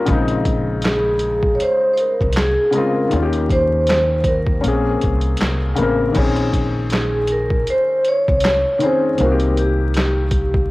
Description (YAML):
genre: lo-fi hip hop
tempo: 79 BPM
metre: 4/4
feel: swing 56% on 16ths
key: Bb dorian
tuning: A4 = 442 Hz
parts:
  - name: felt-muted upright piano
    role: accompaniment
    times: 0.0-10.7 s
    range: Db3 to Bb4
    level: -21 LUFS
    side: left 3 dB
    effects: cassette tape
  - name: upright bass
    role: bass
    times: 0.1-10.7 s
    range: A1 to Eb2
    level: -21 LUFS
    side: equal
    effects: none
  - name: boom bap sampler-style drum kit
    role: drums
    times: 0.1-10.7 s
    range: crash cymbal, handclaps, hi-hat, kick drum, snare drum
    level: -21 LUFS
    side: equal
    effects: cassette tape
  - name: vibraphone with soft mallets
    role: melody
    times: 0.9-10.7 s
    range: G4 to Db5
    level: -18 LUFS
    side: equal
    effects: cassette tape
room: moderate spring reverb, RT60 2.3 s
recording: home recording on cassette, vinyl crackle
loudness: -15 LUFS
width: side -19 dB against mid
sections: 0.0-6.2 A section; 6.2-10.7 A section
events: none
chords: 0.1 Bbm11; 3.1 Eb7; 4.6 Bbm9; 6.2 Bbm11; 9.2 Cm7